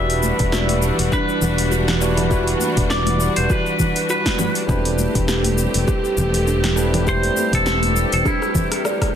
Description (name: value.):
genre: sunset chillout.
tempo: 101 BPM.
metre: 4/4.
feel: swing 56% on 16ths.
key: E minor.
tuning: A4 = 439 Hz.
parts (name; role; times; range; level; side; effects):
twangy electric guitar; melody; 0.0-8.8 s; E4 to E5; -24 LUFS; left 1 dB; vintage 12-bit sampler grit, digital delay.
barky tine electric piano; accompaniment; 0.0-9.2 s; G3 to C5; -25 LUFS; equal; overdrive, auto-pan, ping-pong delay.
clear symphonic string section; sustained chords; 0.0-9.2 s; E3 to G4; -25 LUFS; equal; none.
kalimba; arpeggios; 0.0-9.1 s; D4 to D5; -28 LUFS; right 2 dB; ping-pong delay.
fretless electric bass; bass; 0.0-8.2 s; E1; -21 LUFS; equal; analog chorus.
deep house drum kit; drums; 0.1-9.1 s; congas, hi-hat, rim click, shaker, snare drum; -24 LUFS; right 1 dB; overdrive.
congas; percussion; 0.2-8.7 s; none; -28 LUFS; left 3 dB; none.
electronic kick drum; drums; 0.4-9.1 s; none; -22 LUFS; equal; overdrive.
room: moderate plate reverb, RT60 1.6 s.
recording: dense, heavily limited modern master.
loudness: -16 LUFS.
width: side -9 dB against mid.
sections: 0.0-9.2 A section.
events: drum fill 8.3-9.2.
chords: 0.0 Em9; 4.7 Am11/E.